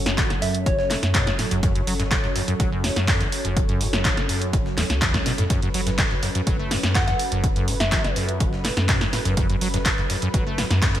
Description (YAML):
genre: acid house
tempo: 124 BPM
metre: 4/4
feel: straight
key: F# minor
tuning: A4 = 439 Hz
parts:
  - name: warm analog pad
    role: sustained chords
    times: 0.0-11.0 s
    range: F#3 to C#5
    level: -30 LUFS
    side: equal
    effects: chorus, sidechain pumping
  - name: warm sub bass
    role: bass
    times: 0.0-11.0 s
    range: F#1 to F#2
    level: -27 LUFS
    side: equal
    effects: tube saturation, sidechain pumping
  - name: acid bass, saw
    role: riff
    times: 0.1-11.0 s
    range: E2 to A3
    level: -26 LUFS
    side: equal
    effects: analog chorus, sidechain pumping
  - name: breakbeat sampler-style drum kit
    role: drums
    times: 0.1-11.0 s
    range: hi-hat, snare drum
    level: -34 LUFS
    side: equal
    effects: none
  - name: punchy analog drum machine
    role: drums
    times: 0.1-11.0 s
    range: handclaps, hi-hat, snare drum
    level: -25 LUFS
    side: equal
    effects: gated reverb
  - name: electronic kick drum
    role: drums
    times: 0.2-10.9 s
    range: none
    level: -24 LUFS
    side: equal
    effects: none
  - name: soft synth bell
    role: melody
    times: 0.4-0.9, 7.0-8.2 s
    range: C#5 to F#5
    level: -29 LUFS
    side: equal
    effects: chorus, digital delay
room: light reverb, digital ambience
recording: bright 1980s-style digital production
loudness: -19 LUFS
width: side -12 dB against mid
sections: 0.0-11.0 A section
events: none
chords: 0.0 F#m